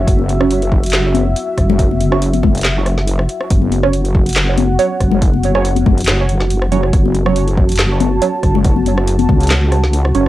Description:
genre	deep dubstep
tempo	140 BPM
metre	4/4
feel	swing 54% on 16ths, half-time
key	F# minor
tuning	A4 = 441 Hz
part	dark analog pad	sustained chords	0.0-10.3 s	F#4 to A5	-21 LUFS	right 1 dB	chorus, vintage 12-bit sampler grit, cassette tape
part	wobble bass	bass	0.0-10.3 s	F#1 to C#2	-15 LUFS	equal	chorus
part	electronic kick drum	drums	0.1-9.4 s	none	-14 LUFS	equal	cassette tape
part	garage drum kit	drums	0.1-10.3 s	handclaps, hi-hat, rim click, snare drum	-20 LUFS	equal	overdrive, cassette tape
part	congas	percussion	0.2-9.4 s	none	-19 LUFS	left 10 dB	dub echo
part	filtered dub chord stab	stabs	0.4-10.2 s	F#3 to C#5	-19 LUFS	right 6 dB	phaser, analog chorus, cassette tape, dub echo
room	light reverb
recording	home recording on cassette, faint mains hum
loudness	-12 LUFS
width	side -15 dB against mid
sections	0.0-10.3 A section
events	none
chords	0.0 F#5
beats	| 0.08 0.51 0.93 1.36 | 1.79 2.22 2.65 3.08 | 3.50 3.93 4.36 4.79 | 5.22 5.65 6.08 6.50 | 6.93 7.36 7.79 8.22 | 8.65 9.08 9.51 9.93

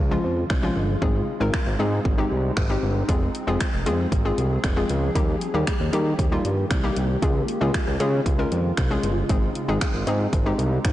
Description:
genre	dance-pop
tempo	116 BPM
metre	4/4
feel	straight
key	Ab major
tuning	A4 = 437 Hz
part	granular cloud pad	sustained chords	0.3-10.9 s	Db3 to Ab4	-32 LUFS	equal	built-in reverb, sidechain pumping
part	fat analog bass	bass	0.0-10.9 s	F1 to Eb3	-24 LUFS	equal	sidechain pumping
part	hollow square pluck	accompaniment	0.1-10.7 s	F3 to Bb4	-26 LUFS	left 2 dB	chorus, sidechain pumping
part	house drum kit	drums	0.5-10.9 s	finger snaps, hi-hat, kick drum	-25 LUFS	equal	soft clipping on snare
room	light reverb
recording	blown-out, overdriven recording, overdrive, nothing above 10.3 kHz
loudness	-20 LUFS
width	side -14 dB against mid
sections	0.0-10.9 A section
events	none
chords	0.0 Db; 1.0 Ab; 3.1 Fm; 5.2 Eb; 7.2 Db; 9.3 Ab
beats	0.50 | 1.02 1.54 2.05 2.57 | 3.09 3.60 4.12 4.64 | 5.16 5.67 6.19 6.71 | 7.23 7.74 8.26 8.78 | 9.29 9.81 10.33 10.85

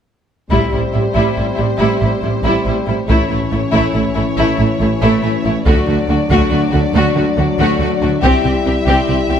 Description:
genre	cinematic, epic orchestral film score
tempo	140 BPM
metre	3/4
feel	straight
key	A dorian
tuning	A4 = 440 Hz
part	warm symphonic violin section	melody	0.5-9.4 s	C5 to E5	-25 LUFS	left 5 dB	none
part	clear symphonic violin section	second line	0.5-9.4 s	E4 to G4	-19 LUFS	left 3 dB	none
part	rich symphonic viola section	accompaniment	0.5-9.4 s	G3 to C4	-20 LUFS	right 1 dB	none
part	warm French horn section	sustained chords	0.5-9.4 s	E3 to E4	-20 LUFS	left 4 dB	none
part	bright symphonic double bass section	bass	0.5-9.4 s	A1 to D2	-19 LUFS	right 3 dB	none
part	dark symphonic cello section	bass	0.5-9.4 s	A2 to D3	-21 LUFS	right 3 dB	none
part	taiko ensemble	drums	0.5-9.0 s	none	-20 LUFS	equal	none
room	moderate scoring stage reverb, RT60 1.8 s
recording	none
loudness	-12 LUFS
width	side -8 dB against mid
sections	0.5-9.4 A section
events	build-up 0.5-9.4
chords	0.5 Am7; 3.1 A; 5.7 D; 8.2 C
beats	| 0.52 0.94 1.37 | 1.80 2.23 2.66 | 3.09 3.52 3.94 | 4.37 4.80 5.23 | 5.66 6.09 6.51 | 6.94 7.37 7.80 | 8.23 8.66 9.09

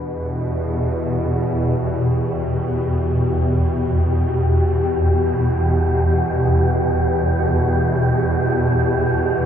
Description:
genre	dark ambient drone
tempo	free time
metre	none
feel	none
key	E minor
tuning	A4 = 440 Hz
part	deep dark ambient pad	sustained chords	0.0-9.5 s	D4 to F#5	-29 LUFS	equal	none
part	swarming drone	drone	0.0-9.5 s	E2 to B2	-18 LUFS	equal	built-in reverb
part	wind-like tuned noise texture	texture	0.4-9.5 s	G4	-24 LUFS	equal	built-in reverb
room	wet huge ambient reverb, RT60 7.6 s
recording	none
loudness	-16 LUFS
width	side -9 dB against mid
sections	0.0-9.5 A section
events	none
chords	0.0 Emadd9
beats	free time

